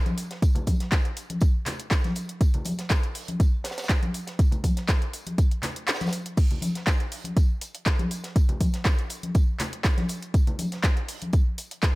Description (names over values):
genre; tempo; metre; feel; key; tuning
house; 121 BPM; 4/4; straight; none; none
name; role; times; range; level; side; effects
deep house drum kit; drums; 0.1-11.9 s; crash cymbal, handclaps, hi-hat; -31 LUFS; equal; overdrive
congas; percussion; 0.1-11.3 s; none; -32 LUFS; left 1 dB; none
tight funk drum kit; drums; 0.2-12.0 s; hi-hat, snare drum, tambourine; -39 LUFS; right 1 dB; sidechain pumping on hats, high-pass filter on hats, high-pass filter on snare, sidechain pumping on perc, high-pass filter on perc, high-pass filter on room
electronic kick drum; drums; 0.4-11.9 s; none; -21 LUFS; equal; overdrive
room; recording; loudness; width
studio reverb; none; -23 LUFS; side -21 dB against mid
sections
0.0-12.0 A section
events
break 5.9-6.4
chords
none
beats
| 0.42 0.92 1.42 1.91 | 2.41 2.90 3.40 3.90 | 4.39 4.89 5.38 5.88 | 6.37 6.87 7.37 7.86 | 8.36 8.85 9.35 9.85 | 10.34 10.84 11.33 11.83